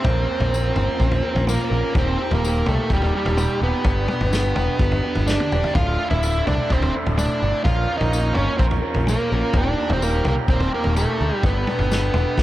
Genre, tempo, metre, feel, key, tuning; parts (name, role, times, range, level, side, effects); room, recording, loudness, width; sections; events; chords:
psychedelic rock; 127 BPM; 4/4; straight; A4 = 440 Hz
octave-fuzz lead guitar; melody; 0.0-12.4 s; G3 to F4; -24 LUFS; right 1 dB; distortion, analog delay
raw garage guitar; riff; 0.0-12.4 s; D2 to Bb4; -26 LUFS; right 1 dB; overdrive, phaser
picked electric bass; bass; 0.0-12.4 s; D1 to D2; -22 LUFS; equal
vintage drum kit; drums; 0.0-12.4 s; kick drum, snare drum, toms; -24 LUFS; equal
tambourine; percussion; 0.5-12.0 s; -37 LUFS; left 6 dB; analog delay
hand-pumped harmonium; sustained chords; 5.8-12.4 s; G4 to Bb5; -34 LUFS; right 3 dB
small room ambience; echo-heavy mix; -18 LUFS; side -15 dB against mid
0.0-12.4 A section
drum fill 5.3-5.8
0.1 Bbmadd9; 2.0 Eb; 3.9 G; 5.8 Dsus2; 7.7 Bbmadd9; 9.6 Eb; 11.4 Gadd9